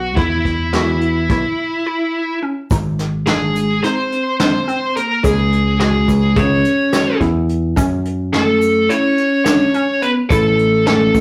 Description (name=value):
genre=progressive instrumental, band music in an uneven meter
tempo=213 BPM (eighths)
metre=9/8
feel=straight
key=unclear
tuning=A4 = 440 Hz
part: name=high-gain lead guitar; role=melody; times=0.0-11.2 s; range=E4 to C#5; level=-20 LUFS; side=equal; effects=distortion
part: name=hollow square pluck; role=arpeggios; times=0.0-11.2 s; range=B#3 to G#4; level=-25 LUFS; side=equal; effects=chorus
part: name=picked electric bass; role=bass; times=0.0-11.2 s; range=G#1 to F#2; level=-21 LUFS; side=equal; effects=none
part: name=vintage brush drum kit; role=drums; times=0.2-11.2 s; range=hi-hat, kick drum, snare drum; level=-23 LUFS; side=equal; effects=none
part: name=tube shaker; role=percussion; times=2.7-11.2 s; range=none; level=-40 LUFS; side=equal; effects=none
part: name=vibraphone with hard mallets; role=second line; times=3.3-11.2 s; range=G#3 to C#4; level=-21 LUFS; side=equal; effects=none
room=wet studio reverb, RT60 0.6 s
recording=rough rehearsal-room recording, warm saturation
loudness=-16 LUFS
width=mono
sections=0.0-2.7 A section; 2.7-11.2 B section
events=break 1.4-2.7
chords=0.2 E5; 2.7 G#; 5.2 C#m; 7.8 F#m; 10.3 A